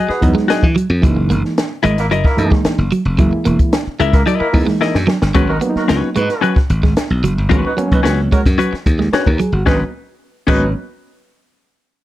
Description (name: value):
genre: funk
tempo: 111 BPM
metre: 4/4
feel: straight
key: G# minor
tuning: A4 = 441 Hz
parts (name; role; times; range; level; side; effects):
- semi-hollow electric guitar; accompaniment; 0.0-10.6 s; C#4 to E5; -18 LUFS; left 7 dB; plate reverb
- clean electric guitar; riff; 0.0-10.6 s; F#3 to B3; -20 LUFS; right 4 dB; none
- mellow horn section; second line; 0.1-10.7 s; F#3 to C#5; -22 LUFS; right 2 dB; plate reverb
- glassy slap bass; bass; 0.1-10.7 s; E1 to E3; -17 LUFS; equal; none
- compact cocktail drum kit; drums; 0.1-10.6 s; crash cymbal, hi-hat, kick drum, snare drum; -16 LUFS; equal; none
- overdriven reed electric piano; stabs; 0.2-10.7 s; E3 to B4; -20 LUFS; right 2 dB; fast tremolo, slapback echo
room: light reverb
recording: dark, warm production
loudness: -12 LUFS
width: side -15 dB against mid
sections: 0.0-5.3 A section; 5.3-9.7 B section; 9.7-11.8 C section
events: drum fill 4.8-5.3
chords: 0.0 Emaj9; 1.0 F#13; 5.3 G#m11